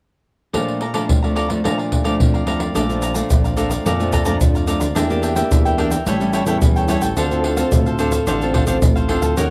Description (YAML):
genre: samba and choro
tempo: 109 BPM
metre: 4/4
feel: straight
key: Bb major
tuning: A4 = 440 Hz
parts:
  - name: cavaquinho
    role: accompaniment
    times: 0.5-9.5 s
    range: D4 to Bb5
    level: -26 LUFS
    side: equal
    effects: cassette tape
  - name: nylon-string guitar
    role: accompaniment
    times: 0.5-9.5 s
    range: F2 to Bb4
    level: -23 LUFS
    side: equal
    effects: cassette tape
  - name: surdo, pandeiro and tube shaker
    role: percussion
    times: 0.5-9.5 s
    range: none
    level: -21 LUFS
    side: equal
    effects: none
  - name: smooth synth bass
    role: bass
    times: 2.8-9.5 s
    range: A1 to F2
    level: -25 LUFS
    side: equal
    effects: none
room: wet small room reverb, RT60 0.5 s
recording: home recording on cassette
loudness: -18 LUFS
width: mono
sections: 0.5-2.8 A section; 2.8-9.5 B section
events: none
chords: 0.5 Bbmaj7; 5.0 Em7b5; 6.1 A7; 7.2 Dm7